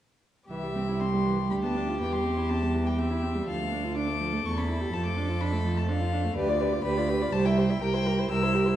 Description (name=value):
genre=quick classical-period movement for string quartet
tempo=123 BPM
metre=3/4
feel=rubato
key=C major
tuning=A4 = 440 Hz
part: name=rich violin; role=melody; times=0.5-8.8 s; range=D5 to E6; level=-34 LUFS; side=left 7 dB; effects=none
part: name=warm violin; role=second line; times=0.5-8.8 s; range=G4 to E5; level=-33 LUFS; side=left 2 dB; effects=none
part: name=warm viola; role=accompaniment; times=0.5-8.8 s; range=E3 to G4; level=-31 LUFS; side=right 1 dB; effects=none
part: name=dark cello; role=bass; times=0.5-8.7 s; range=C2 to F2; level=-28 LUFS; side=right 2 dB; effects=none
room=wet recital hall reverb, RT60 1.6 s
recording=studio reverb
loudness=-25 LUFS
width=side -12 dB against mid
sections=0.5-8.8 A section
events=none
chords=0.5 C; 1.5 G7/D; 2.0 C/E; 3.5 Dm; 4.5 A7/E; 4.9 Dm/F; 6.4 G7/D; 7.3 C